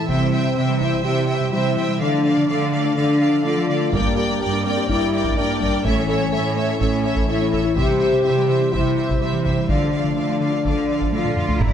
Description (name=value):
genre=cinematic, hybrid orchestral and electronic film score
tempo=125 BPM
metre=4/4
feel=straight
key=D minor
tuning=A4 = 439 Hz
part: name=warm symphonic violin section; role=second line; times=0.0-11.7 s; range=D5 to Bb5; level=-27 LUFS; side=left 2 dB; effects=none
part: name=warm symphonic viola section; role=accompaniment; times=0.0-11.7 s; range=Bb3 to E5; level=-27 LUFS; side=right 2 dB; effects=none
part: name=hollow soft pad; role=sustained chords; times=0.0-11.7 s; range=E3 to D5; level=-26 LUFS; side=equal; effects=chorus
part: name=mellow French horn section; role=sustained chords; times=0.0-11.7 s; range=Bb3 to G4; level=-22 LUFS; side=left 4 dB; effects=none
part: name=harp-like synth pluck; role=arpeggios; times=0.0-11.7 s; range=C3 to A4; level=-27 LUFS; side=left 1 dB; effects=chorus, tape echo
part: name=rich symphonic cello section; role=bass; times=0.0-11.7 s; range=G2 to F4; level=-24 LUFS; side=right 5 dB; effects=none
part: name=taiko ensemble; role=drums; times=0.1-1.0, 3.9-11.7 s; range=none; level=-26 LUFS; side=right 1 dB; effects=none
part: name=bright trombone section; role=sustained chords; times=11.6-11.7 s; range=none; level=barely audible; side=none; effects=none
part: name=rich symphonic double bass section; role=bass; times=11.6-11.7 s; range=G2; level=-21 LUFS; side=right 6 dB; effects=none
part: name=sub bass with octave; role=bass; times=11.6-11.7 s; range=G1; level=-21 LUFS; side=equal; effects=none
room=moderate scoring stage reverb, RT60 2.0 s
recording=none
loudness=-17 LUFS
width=side -9 dB against mid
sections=0.0-11.6 A section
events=drum fill 11.1-11.6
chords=0.1 C; 2.0 Dm; 3.9 Gm; 5.8 A; 7.8 C; 9.7 Dm